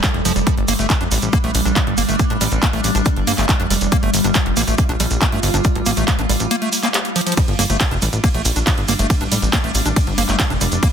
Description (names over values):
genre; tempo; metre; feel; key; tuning
psychedelic trance; 139 BPM; 4/4; straight; G minor; A4 = 441 Hz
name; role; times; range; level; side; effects
evolving wavetable pad; sustained chords; 0.0-10.9 s; G3 to F4; -23 LUFS; equal; chorus, built-in reverb, phaser, sidechain pumping
liquid acid bass; riff; 0.0-10.9 s; F3 to G4; -23 LUFS; right 1 dB; chorus, auto-pan, sidechain pumping, digital delay
drum and bass drum kit; drums; 0.0-10.9 s; handclaps, hi-hat, ride cymbal; -22 LUFS; right 1 dB; none
electronic kick drum; drums; 0.0-10.9 s; none; -18 LUFS; equal; none
tube shaker; percussion; 0.0-10.9 s; none; -26 LUFS; right 3 dB; none
plucky analog bass; bass; 0.1-10.8 s; F1 to Bb1; -20 LUFS; equal; tube saturation
room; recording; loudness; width
light reverb; dense, heavily limited modern master; -15 LUFS; side -8 dB against mid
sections
0.0-10.9 A section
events
kick drops out 6.5-7.4; drum fill 7.2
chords
0.0 G5